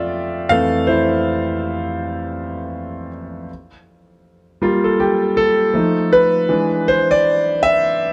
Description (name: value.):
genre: R&B.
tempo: 80 BPM.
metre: 4/4.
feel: swing 60% on 16ths.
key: unclear.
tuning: A4 = 441 Hz.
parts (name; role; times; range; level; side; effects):
warm concert grand piano; solo; 0.0-8.1 s; F2 to F5; -18 LUFS; equal; none.
room: light reverb.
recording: dark, warm production.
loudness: -17 LUFS.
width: mono.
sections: 0.0-3.5 A section; 3.5-8.1 B section.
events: grand piano solo 0.0-3.5, 3.5-8.1.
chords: 0.0 Fmaj13; 3.5 Gm7; 5.7 F7; 6.5 E7.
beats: | 0.48 1.23 1.98 2.73 | 3.48 4.23 4.98 5.73 | 6.48 7.23 7.98.